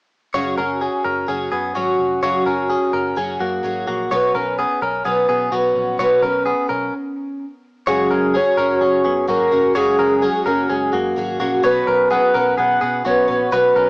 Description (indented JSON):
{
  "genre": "indie pop",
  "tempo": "127 BPM",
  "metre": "4/4",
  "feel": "straight",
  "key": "F# major",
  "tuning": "A4 = 440 Hz",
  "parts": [
    { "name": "picked twelve-string acoustic guitar", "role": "accompaniment", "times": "0.3-13.9 s", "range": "F#2 to B4", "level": "-19 LUFS", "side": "equal", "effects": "none" },
    { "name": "direct-recorded clean electric guitar", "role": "arpeggios", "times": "0.3-13.9 s", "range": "A#3 to C#5", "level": "-20 LUFS", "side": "left 1 dB", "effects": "none" },
    { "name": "vintage muted picked electric bass", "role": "bass", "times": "0.3-13.9 s", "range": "E#1 to B2", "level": "-35 LUFS", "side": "equal", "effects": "none" },
    { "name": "soft octave-layered synth lead", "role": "melody", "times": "7.9-13.9 s", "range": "G#4 to F#5", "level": "-17 LUFS", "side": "equal", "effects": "chorus, cassette tape" }
  ],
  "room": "wet studio reverb, RT60 0.6 s",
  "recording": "home recording on cassette, small speaker sound",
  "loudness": "-16 LUFS",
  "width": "side -28 dB against mid",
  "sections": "0.3-7.9 A section; 7.9-13.9 B section",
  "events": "stop 6.9-7.9",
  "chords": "0.3 F#sus2; 4.1 Bsus2; 7.9 F#sus2"
}